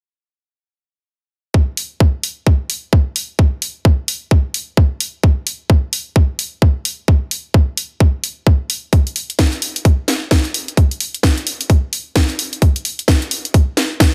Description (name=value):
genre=bass house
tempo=130 BPM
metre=4/4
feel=swing 60% on 16ths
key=none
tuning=none
part: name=electronic kick drum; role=drums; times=1.5-14.1 s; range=none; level=-14 LUFS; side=equal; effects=overdrive, small room ambience
part: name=house drum kit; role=drums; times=1.8-14.1 s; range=hi-hat, snare drum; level=-21 LUFS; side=equal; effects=small room ambience
room=little or no reverb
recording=dense, heavily limited modern master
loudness=-16 LUFS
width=mono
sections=1.5-14.1 A section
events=none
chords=none